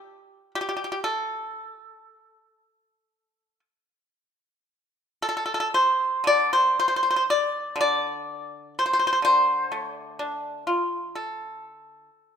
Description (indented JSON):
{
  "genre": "chinese traditional, Chinese solo plucked strings",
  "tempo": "56-65 BPM",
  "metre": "4/4",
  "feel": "rubato",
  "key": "D yu mode",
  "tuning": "A4 = 440 Hz",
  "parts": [
    { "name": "pipa", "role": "solo", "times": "0.0-12.4 s", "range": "D3 to D5", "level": "-22 LUFS", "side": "equal", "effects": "none" }
  ],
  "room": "light reverb",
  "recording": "minimal, uncompressed stereo recording",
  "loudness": "-22 LUFS",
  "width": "side -7 dB against mid",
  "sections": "0.0-12.4 A section",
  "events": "none",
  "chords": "none"
}